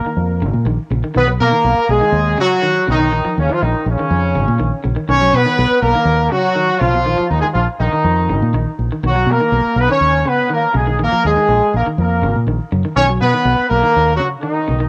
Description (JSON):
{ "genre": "afrobeat", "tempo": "122 BPM", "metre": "4/4", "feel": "straight", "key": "unclear", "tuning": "A4 = 440 Hz", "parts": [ { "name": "warm horn section", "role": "melody", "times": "0.0-14.9 s", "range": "Db3 to Db5", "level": "-17 LUFS", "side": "equal", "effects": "cassette tape" }, { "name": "fingered electric bass", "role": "bass", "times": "0.0-14.9 s", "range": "Ab1 to B2", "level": "-19 LUFS", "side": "equal", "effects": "none" }, { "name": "electric guitar at the edge of break-up", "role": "arpeggios", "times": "0.1-14.9 s", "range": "B2 to F#3", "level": "-26 LUFS", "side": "equal", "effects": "cassette tape" } ], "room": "light reverb, small room ambience", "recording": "home recording on cassette, lossy compression artefacts", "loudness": "-15 LUFS", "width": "mono", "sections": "0.0-1.2 A section; 1.2-14.9 B section", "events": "none", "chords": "0.0 Bbsus4; 1.2 Bmaj7; 3.1 Bbsus4; 5.1 Bmaj7; 7.1 Bbsus4; 9.0 Bmaj7; 11.0 Bb7sus4; 13.0 Bmaj7" }